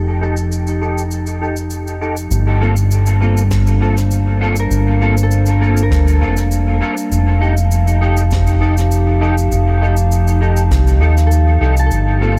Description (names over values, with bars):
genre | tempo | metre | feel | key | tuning
ambient dub | 100 BPM | 4/4 | straight | unclear | A4 = 439 Hz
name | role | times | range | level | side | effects
warbly tape-like pad | sustained chords | 0.0-12.4 s | F3 to A5 | -24 LUFS | equal | chorus, built-in reverb
Celtic harp | arpeggios | 0.0-12.4 s | A4 to A5 | -31 LUFS | equal | dub echo
fingered electric bass | bass | 0.0-12.4 s | F1 to Eb2 | -16 LUFS | equal | none
clean electric guitar | stabs | 0.2-12.3 s | Bb3 to A4 | -24 LUFS | equal | ensemble chorus, low-pass filter, dub echo
cabasa and snare drum | drums | 0.4-12.0 s | none | -33 LUFS | equal | dub echo
electronic kick drum | drums | 3.5-10.8 s | none | -25 LUFS | equal | none
room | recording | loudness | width
small room ambience | none | -15 LUFS | mono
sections
0.0-2.3 A section; 2.3-12.4 B section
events
filter sweep 0.0-2.3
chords
0.0 F9; 2.3 Gm11; 7.1 F9